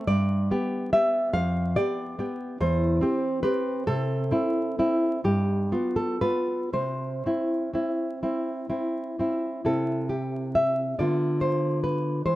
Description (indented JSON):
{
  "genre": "romantic piece for solo classical guitar",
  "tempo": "39-48 BPM (dotted quarters)",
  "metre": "6/8",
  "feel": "rubato",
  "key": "C major",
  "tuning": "A4 = 445 Hz",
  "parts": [
    { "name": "nylon-string guitar", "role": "solo", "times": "0.0-12.4 s", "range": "E2 to F5", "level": "-24 LUFS", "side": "equal", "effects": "none" }
  ],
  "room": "light reverb",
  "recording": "vinyl crackle",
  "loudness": "-24 LUFS",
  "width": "side -16 dB against mid",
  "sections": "0.0-9.6 A section; 9.6-12.4 B section",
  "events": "none",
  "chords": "0.1 G; 1.3 G7/F; 2.6 C/E; 3.9 C; 5.2 G7; 6.7 C; 11.0 Dm6"
}